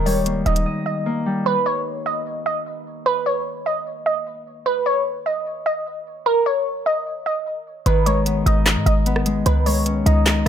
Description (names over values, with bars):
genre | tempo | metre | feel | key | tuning
hip hop, trap | 150 BPM | 4/4 | half-time | G# harmonic minor | A4 = 440 Hz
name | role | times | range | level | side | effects
glassy wavetable pluck | melody | 0.0-10.5 s | A#4 to D#5 | -22 LUFS | right 1 dB | chorus, low-pass filter
Celtic harp | accompaniment | 0.0-4.3, 7.9-10.5 s | D#3 to D#5 | -24 LUFS | left 2 dB | low-pass filter
short 808-style bass | bass | 0.0-0.7, 7.9-10.5 s | D#1 to G#2 | -19 LUFS | equal | none
trap drum kit | drums | 0.1-0.7, 7.9-10.5 s | handclaps, hi-hat, rim click, snare drum | -22 LUFS | right 1 dB | none
room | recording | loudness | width
digital ambience | none | -18 LUFS | side -9 dB against mid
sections
0.0-1.5 A section; 1.5-10.5 B section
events
break 0.7-1.5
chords
0.0 D#; 1.5 N.C.; 7.9 G#m; 9.5 C#sus2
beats
0.26 0.66 1.06 | 1.46 1.86 2.26 2.66 | 3.06 3.46 3.86 4.26 | 4.66 5.06 5.46 5.86 | 6.26 6.66 7.06 7.46 | 7.86 8.26 8.66 9.06 | 9.46 9.86 10.26